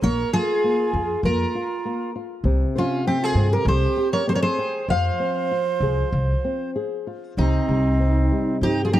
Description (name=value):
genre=fado-style ballad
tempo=98 BPM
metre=4/4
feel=rubato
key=F minor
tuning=A4 = 445 Hz
part: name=fingerpicked twelve-string acoustic guitar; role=melody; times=0.0-9.0 s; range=Eb4 to F5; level=-23 LUFS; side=left 1 dB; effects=none
part: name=breathy bass recorder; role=second line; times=0.0-9.0 s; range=C4 to C5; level=-26 LUFS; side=right 6 dB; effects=none
part: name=flamenco guitar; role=accompaniment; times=0.0-9.0 s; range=C3 to G5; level=-27 LUFS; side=left 2 dB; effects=none
part: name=upright bass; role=bass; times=0.0-9.0 s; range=Bb1 to G2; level=-22 LUFS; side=equal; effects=none
room=light reverb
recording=dry, close 1970s-style studio recording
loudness=-19 LUFS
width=side -13 dB against mid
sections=0.0-7.4 A section; 7.4-9.0 B section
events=none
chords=0.0 Bb5; 2.4 C5; 4.9 Fm; 7.4 Cm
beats=| 0.02 0.64 1.25 1.85 | 2.45 3.05 3.65 4.26 | 4.88 5.50 6.12 6.75 | 7.38 8.00 8.62